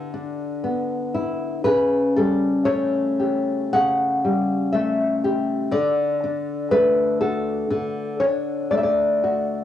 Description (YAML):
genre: romantic piece for solo classical guitar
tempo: 60 BPM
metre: 4/4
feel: rubato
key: D major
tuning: A4 = 440 Hz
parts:
  - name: nylon-string guitar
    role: solo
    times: 0.0-9.6 s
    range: C#3 to F#5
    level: -19 LUFS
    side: left 1 dB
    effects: cassette tape
room: light reverb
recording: home recording on cassette, small room ambience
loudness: -19 LUFS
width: side -11 dB against mid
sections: 0.0-9.6 A section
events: none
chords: 0.0 Em7/D; 1.7 A7/C#; 5.7 D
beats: 0.64 | 1.66 2.67 3.73 4.74 | 5.73 6.70 7.69 8.69